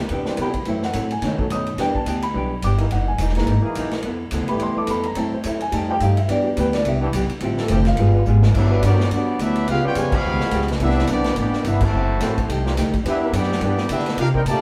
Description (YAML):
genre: jazz, big band swing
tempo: 213 BPM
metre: 4/4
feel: swing 59% on 8ths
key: G major from 8.5 s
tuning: A4 = 440 Hz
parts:
  - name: upright bass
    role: bass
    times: 0.0-14.6 s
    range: E1 to D3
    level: -23 LUFS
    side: equal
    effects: none
  - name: archtop guitar, miked and amplified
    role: accompaniment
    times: 0.1-14.6 s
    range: F#2 to A4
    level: -30 LUFS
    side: equal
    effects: none
  - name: warm grand piano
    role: accompaniment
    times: 0.1-8.4 s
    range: D#3 to D#6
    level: -26 LUFS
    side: equal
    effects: none
  - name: swinging big-band drum kit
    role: drums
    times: 0.1-14.5 s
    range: crash cymbal, hi-hat, kick drum, ride cymbal, snare drum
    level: -30 LUFS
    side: equal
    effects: none
  - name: clear trombone section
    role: sustained chords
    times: 0.3-14.4 s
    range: E3 to B4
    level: -30 LUFS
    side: equal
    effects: none
  - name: dark trombone section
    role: second line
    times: 8.5-14.6 s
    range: B2 to G4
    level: -27 LUFS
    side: equal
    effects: none
  - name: clear trumpet section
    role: melody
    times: 8.6-14.6 s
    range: B3 to B5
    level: -28 LUFS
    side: equal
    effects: none
room: wet small room reverb, RT60 0.5 s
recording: band playing live in one room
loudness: -20 LUFS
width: mono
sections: 0.0-8.5 A section; 8.5-14.6 B section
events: grand piano solo 0.0-8.5; drum fill 8.3; band accent 10.1, 11.8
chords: 0.0 Cmaj7; 0.7 F#m7b5; 1.2 B7; 1.8 Em7; 2.9 F#13; 4.0 Fmaj9#11; 5.2 F#m7b5; 5.7 F9; 6.3 Em7; 7.4 Dm11; 8.0 G7b9; 8.5 Gmaj7; 9.7 C#7#11; 10.8 Cmaj9; 11.9 F#m7b5; 12.5 F9; 13.1 Em7